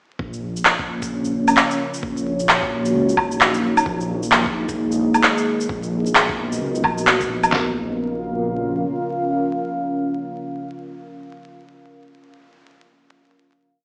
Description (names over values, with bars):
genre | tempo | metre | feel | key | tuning
future garage | 131 BPM | 4/4 | swing 61% on 16ths | Bb phrygian | A4 = 442 Hz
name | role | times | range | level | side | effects
deep dark ambient pad | sustained chords | 0.9-10.8 s | Bb3 to F5 | -25 LUFS | equal | chorus, built-in reverb, sidechain pumping
dark detuned saw bass | bass | 0.2-8.9 s | F1 to Db2 | -30 LUFS | equal | sidechain pumping
lo-fi sampler-style drum kit | drums | 0.2-7.7 s | handclaps, kick drum, snare drum, toms | -28 LUFS | equal | small room ambience
electronic shaker, handclaps and woodblock | drums | 0.3-7.5 s | none | -20 LUFS | equal | small room ambience
room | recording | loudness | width
wet recital hall reverb, RT60 1.5 s | played on a big sound system in a bare room, stone room reverb, vinyl crackle, small speaker sound | -20 LUFS | mono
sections
0.2-7.5 groove; 7.5-11.2 final chord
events
none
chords
0.2 Bbm; 2.0 Ebm7/Bb; 3.9 Absus2/Bb; 5.7 Bmaj7/A#; 7.5 Bbm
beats
| 0.19 0.65 1.11 1.57 | 2.02 2.48 2.94 3.40 | 3.86 4.32 4.77 5.23 | 5.69 6.15 6.61 7.06 | 7.52 7.98 8.44 8.89 | 9.35 9.81 10.27 10.73